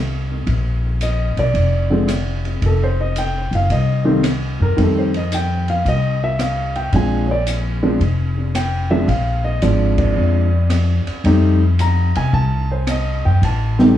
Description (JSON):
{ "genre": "jazz piano trio", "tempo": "111 BPM", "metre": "4/4", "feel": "swing 67% on 8ths", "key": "F mixolydian", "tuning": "A4 = 440 Hz", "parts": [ { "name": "upright bass", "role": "bass", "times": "0.0-14.0 s", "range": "F1 to C3", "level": "-18 LUFS", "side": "left 1 dB", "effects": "none" }, { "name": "open jazz drum kit", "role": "drums", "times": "0.5-13.9 s", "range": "hi-hat, kick drum, ride cymbal, rim click, snare drum", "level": "-24 LUFS", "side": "equal", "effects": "none" }, { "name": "warm concert grand piano", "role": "melody", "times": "1.0-14.0 s", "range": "D3 to Bb5", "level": "-19 LUFS", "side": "equal", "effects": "tape echo" } ], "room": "moderate studio reverb, RT60 0.5 s", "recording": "studio ambience", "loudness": "-15 LUFS", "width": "side -12 dB against mid", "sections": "0.0-14.0 A section", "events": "band accent 9.9", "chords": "0.5 Bb; 2.6 F7sus2; 6.9 Bb9; 11.3 F9" }